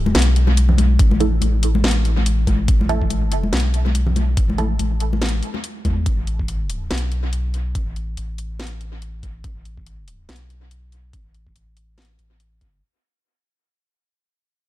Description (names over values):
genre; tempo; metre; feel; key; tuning
deep dubstep; 142 BPM; 4/4; swing 57% on 16ths, half-time; unclear; A4 = 439 Hz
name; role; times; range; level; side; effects
soft dub sub bass; bass; 0.0-12.8 s; G1 to E2; -19 LUFS; equal; none
garage drum kit; drums; 0.1-12.7 s; hi-hat, snare drum; -25 LUFS; equal; small room ambience, dub echo
congas; percussion; 0.1-5.9 s; none; -25 LUFS; left 2 dB; dub echo
electronic kick drum; drums; 1.0-12.7 s; none; -19 LUFS; equal; overdrive, small room ambience
filtered dub chord stab; stabs; 1.2-4.7 s; A3 to A4; -27 LUFS; right 5 dB; phaser, dub echo
room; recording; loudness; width
digital ambience; echo-heavy mix; -17 LUFS; side -15 dB against mid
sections
0.0-12.8 A section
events
fade-out 0.0-12.8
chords
0.0 A5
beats
0.15 0.57 | 0.99 1.42 1.84 2.26 | 2.68 3.10 3.53 3.95 | 4.37 4.79 5.22 5.64 | 6.06 6.49 6.91 7.33 | 7.75 8.18 8.60 9.02 | 9.44 9.87 10.29 10.71 | 11.13 11.55 11.98 12.40